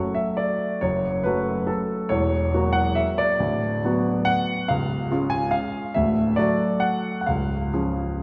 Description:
classical, piano waltz; 139 BPM; 3/4; uneven beats, rubato; F# minor; A4 = 440 Hz
clear grand piano; solo; 0.0-8.2 s; C#1 to G#5; -23 LUFS; equal
wet concert hall reverb, RT60 1.8 s; heard from further back in the room; -23 LUFS; mono
0.0-8.2 A section
0.0 F#m; 2.1 F#7/E; 3.4 Bm/D; 4.7 C#; 6.0 D; 7.3 C#

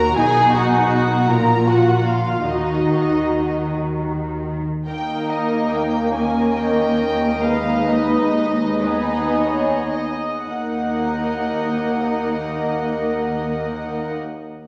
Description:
classical, slow romantic movement for string orchestra; 35-55 BPM (dotted quarters); 6/8; rubato; Eb minor; A4 = 438 Hz
warm symphonic violin section; melody; 0.0-14.1 s; Cb5 to Bb5; -27 LUFS; equal
warm symphonic violin section; second line; 0.0-14.1 s; Eb4 to Eb5; -26 LUFS; equal
dark symphonic viola section; accompaniment; 0.0-14.1 s; Ab3 to Gb4; -25 LUFS; equal
dark symphonic double bass section; bass; 0.0-4.6 s; Bb1 to Eb2; -28 LUFS; equal
warm studio cello section; bass; 0.0-14.1 s; Eb2 to Eb3; -26 LUFS; equal
wet scoring stage reverb, RT60 1.8 s; -20 LUFS; mono
0.0-4.9 A section; 4.9-10.5 B section; 10.5-13.7 C section
slowing down 3.7-10.5
0.2 B; 1.3 Bb5; 2.5 Ebm; 4.9 Eb7; 7.4 Abm/Eb; 10.5 Ebm

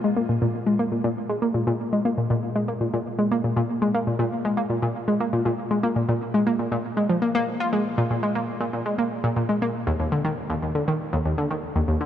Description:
ambient; 119 BPM; 4/4; straight; A4 = 440 Hz
analog pluck; solo; 0.0-12.1 s; Eb2 to F4; -22 LUFS; equal; chorus, analog delay
wet huge ambient reverb, RT60 7.1 s; cassette tape; -22 LUFS; side -10 dB against mid
0.0-12.1 A section

